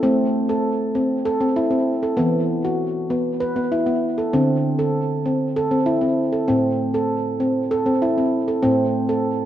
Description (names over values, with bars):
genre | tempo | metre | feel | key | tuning
world meditative | 195 BPM (eighths) | 7/8 | straight | A kumoi | A4 = 442 Hz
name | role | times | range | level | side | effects
handpan | solo | 0.0-9.5 s | A2 to B4 | -18 LUFS | equal | diffuse ambient delay
room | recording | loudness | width
moderate echo chamber reverb, RT60 1.6 s, small room ambience | dark, warm production | -18 LUFS | side -11 dB against mid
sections
0.0-9.5 A section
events
none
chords
0.0 Am; 2.2 E5; 4.3 D5; 6.5 Am